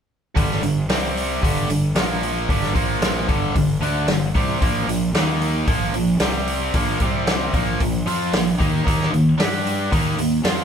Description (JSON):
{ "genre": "classic rock", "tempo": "113 BPM", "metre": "4/4", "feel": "straight", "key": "G minor", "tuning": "A4 = 441 Hz", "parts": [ { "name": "biting overdriven guitar", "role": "riff", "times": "0.4-10.6 s", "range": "G2 to G4", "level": "-21 LUFS", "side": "equal", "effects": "none" }, { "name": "fuzz fingered electric bass", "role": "bass", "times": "0.4-10.6 s", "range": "G1 to G2", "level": "-25 LUFS", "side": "left 1 dB", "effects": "overdrive" }, { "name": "vintage drum kit", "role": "drums", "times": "0.4-10.6 s", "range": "hi-hat, kick drum, snare drum", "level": "-22 LUFS", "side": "equal", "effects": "none" } ], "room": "moderate studio reverb, RT60 0.6 s", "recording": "band playing live in one room", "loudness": "-18 LUFS", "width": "side -7 dB against mid", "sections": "0.4-10.6 A section", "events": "none", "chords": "0.4 G5; 0.9 C5; 1.4 G5; 1.9 Bb5; 2.5 G5; 2.7 Bb5; 3.3 G5; 4.6 Bb5; 5.1 Eb5; 5.7 Bb5; 6.2 C5; 6.7 Bb5; 7.0 C5; 7.5 Bb5; 8.9 Eb5; 9.4 G5; 9.9 Eb5" }